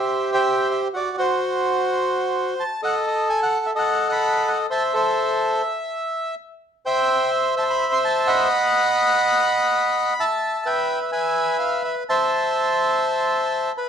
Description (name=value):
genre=tango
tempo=126 BPM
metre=4/4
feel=rubato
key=A minor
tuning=A4 = 439 Hz
part: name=bandoneon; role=solo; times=0.0-13.9 s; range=F#4 to C6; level=-19 LUFS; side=equal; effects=none
room=moderate large studio reverb, RT60 0.9 s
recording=dark, warm production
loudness=-19 LUFS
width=side -8 dB against mid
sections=0.0-13.9 A section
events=none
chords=0.0 Gsus4; 0.9 N.C.; 2.8 B7/A; 4.7 Am; 5.7 N.C.; 6.6 Cmaj7#11; 8.5 B; 10.4 E5; 12.3 Am